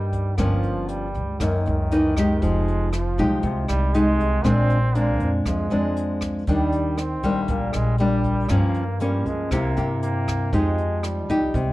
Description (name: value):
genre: bossa nova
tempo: 118 BPM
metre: 4/4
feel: straight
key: unclear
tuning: A4 = 440 Hz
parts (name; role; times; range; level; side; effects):
- bright trombone; second line; 0.0-11.7 s; D#3 to C4; -29 LUFS; right 2 dB; none
- nylon-string guitar; accompaniment; 0.0-11.7 s; F#2 to G4; -22 LUFS; left 1 dB; none
- upright bass; bass; 0.0-11.7 s; F1 to Db3; -25 LUFS; equal; none
- jazz brush drum kit; drums; 0.1-11.7 s; hi-hat, kick drum, rim click; -31 LUFS; right 1 dB; none
room: light reverb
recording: dark, warm production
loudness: -20 LUFS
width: side -17 dB against mid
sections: 0.0-11.7 A section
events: none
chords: 0.4 Gm7b5; 1.4 F#13; 2.4 Fm9; 4.4 Bb9; 6.5 Ebmaj7; 8.5 Gm7b5; 9.5 C7; 10.5 Fm9